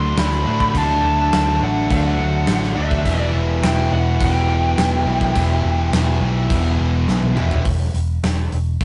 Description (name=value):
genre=hard rock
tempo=104 BPM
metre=4/4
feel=straight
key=E minor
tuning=A4 = 440 Hz
part: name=lead guitar through a small cranked amp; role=melody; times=0.0-7.0 s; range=E5 to C6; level=-25 LUFS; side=equal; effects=overdrive, tape echo
part: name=distorted electric guitar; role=riff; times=0.0-7.6 s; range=E2 to D4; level=-30 LUFS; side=equal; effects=distortion
part: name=high-gain distorted guitar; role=riff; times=0.0-7.6 s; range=E2 to D4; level=-30 LUFS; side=equal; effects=distortion
part: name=tight distorted guitar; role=riff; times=0.0-7.6 s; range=D3 to G4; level=-27 LUFS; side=equal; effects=distortion
part: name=picked electric bass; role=bass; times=0.0-8.8 s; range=E1 to A2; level=-22 LUFS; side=equal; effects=none
part: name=gated 80s drum kit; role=drums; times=0.2-8.8 s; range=crash cymbal, hi-hat, kick drum, snare drum, toms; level=-25 LUFS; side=equal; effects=none
room=moderate stone room reverb, RT60 1.3 s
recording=rough rehearsal-room recording, tube saturation, nothing above 10.8 kHz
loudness=-18 LUFS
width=mono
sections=0.0-7.6 A section; 7.6-8.8 B section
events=drum fill 7.1-7.6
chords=0.0 D; 3.0 Em; 7.6 N.C.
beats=0.17 | 0.74 1.32 1.89 2.47 | 3.04 3.62 4.19 4.77 | 5.34 5.92 6.50 7.07 | 7.65 8.22 8.80